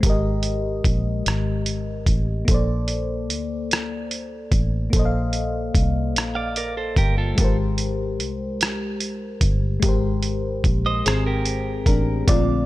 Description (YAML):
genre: slow six-eight R&B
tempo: 49 BPM (dotted quarters)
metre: 6/8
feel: straight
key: unclear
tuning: A4 = 440 Hz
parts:
  - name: mellow FM electric piano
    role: accompaniment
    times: 0.0-12.7 s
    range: D3 to F5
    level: -26 LUFS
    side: left 2 dB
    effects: chorus
  - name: fingered electric bass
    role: bass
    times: 0.0-12.7 s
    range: G1 to D2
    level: -24 LUFS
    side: equal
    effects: none
  - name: dusty soul sampler-style drum kit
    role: drums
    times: 0.0-12.5 s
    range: hi-hat, kick drum, rim click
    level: -21 LUFS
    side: equal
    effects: none
  - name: clean electric guitar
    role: second line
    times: 6.4-12.2 s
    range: F4 to F5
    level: -27 LUFS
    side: right 4 dB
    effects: spring reverb
room: little or no reverb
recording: none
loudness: -20 LUFS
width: side -17 dB against mid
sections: 0.0-12.3 A section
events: none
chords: 0.0 Abmaj9; 2.5 Bbmaj9; 7.4 Abmaj9